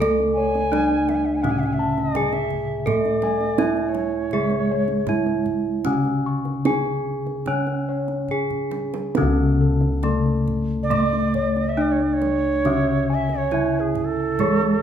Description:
Javanese gamelan; 69-84 BPM; 4/4; straight; C# pelog; A4 = 440 Hz
gamelan-type bronze metallophone; melody; 0.0-14.8 s; A3 to C#5; -23 LUFS; right 1 dB
gamelan-type bronze metallophone; accompaniment; 0.0-14.8 s; C#3 to C#4; -26 LUFS; equal
gamelan-type bossed gongs; arpeggios; 0.0-14.8 s; A4 to C#6; -28 LUFS; left 7 dB
gamelan-type bossed gongs; bass; 0.0-14.8 s; C#2 to A4; -27 LUFS; left 1 dB
kendang; percussion; 0.0-14.7 s; -30 LUFS; right 5 dB
bright bansuri; second line; 0.3-5.5, 10.8-14.8 s; G#4 to G#5; -26 LUFS; right 5 dB
wet recital hall reverb, RT60 1.3 s; minimal, uncompressed stereo recording; -19 LUFS; side -9 dB against mid
0.0-9.2 A section; 9.2-14.8 B section
drum fill 8.3-9.2

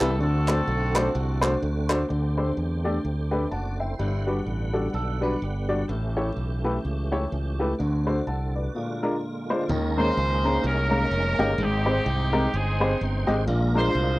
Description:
uptempo gospel; 127 BPM; 4/4; swing 59% on 8ths; A4 = 441 Hz
clear horn section; melody; 0.0-1.6, 10.0-14.2 s; C4 to C5; -28 LUFS; equal; cassette tape
dark baby grand piano; accompaniment; 0.0-14.2 s; G2 to A5; -26 LUFS; left 1 dB; cassette tape
tonewheel organ; sustained chords; 0.0-14.2 s; D3 to G5; -33 LUFS; right 2 dB; slow rotary speaker, chorus vibrato, cassette tape
modern bright fingered electric bass; bass; 0.0-14.2 s; F1 to E2; -26 LUFS; equal
group handclap; percussion; 0.0-2.0 s; -33 LUFS; right 3 dB
clean electric guitar; second line; 4.9-5.9 s; G4 to B4; -36 LUFS; right 4 dB; cassette tape
moderate studio reverb, RT60 0.5 s; home recording on cassette; -22 LUFS; side -19 dB against mid
0.0-2.1 A section; 2.1-9.7 B section; 9.7-14.2 A section
0.2 D7; 2.1 D7sus4; 4.0 Gmaj7; 5.9 A7; 7.8 D7; 8.7 Bb7; 9.7 Eb7sus4; 11.6 Abmaj7; 13.5 Bb7

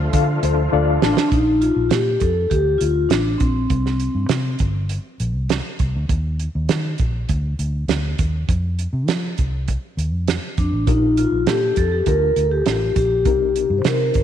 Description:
uptempo 1960s-style soul; 100 BPM; 4/4; straight; Bb major; A4 = 440 Hz
overdriven tonewheel organ; sustained chords; 0.0-1.3 s; D3 to F4; -27 LUFS; right 1 dB; slow rotary speaker, chorus vibrato
vintage muted fingered electric bass; bass; 0.0-14.2 s; G1 to F3; -21 LUFS; equal
reed electric piano; accompaniment; 0.1-1.3, 10.9-14.2 s; Bb2 to A5; -24 LUFS; left 9 dB; fast tremolo
warm soul drum kit; drums; 0.1-14.2 s; hi-hat, kick drum, snare drum; -21 LUFS; right 3 dB
vibraphone with soft mallets; melody; 1.0-4.5, 10.6-14.2 s; C4 to C5; -19 LUFS; left 2 dB
light reverb, small room ambience; 1960s-style stereo; -17 LUFS; side -10 dB against mid
0.0-1.3 A section; 1.3-14.2 B section
reed electric piano fill 0.4-1.3; drum fill 0.7-1.3
0.0 Dm; 1.3 Bb; 3.7 C5; 6.1 Eb5; 8.5 F5; 10.9 Bb6; 13.3 Cm7

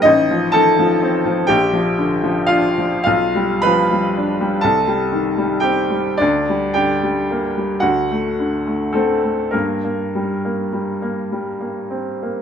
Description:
classical, romantic nocturne for solo piano; 29-43 BPM (dotted quarters); 12/8; rubato; G minor; A4 = 440 Hz
clear upright piano; solo; 0.0-12.4 s; A1 to B5; -15 LUFS; equal
moderate recital hall reverb, RT60 1.7 s; close, detailed microphones; -16 LUFS; side -8 dB against mid
0.0-12.4 A section
0.0 F7/A; 1.5 Bb; 3.1 G7/B; 4.6 Cm; 6.2 Gm/D; 7.8 D7; 9.5 Gm

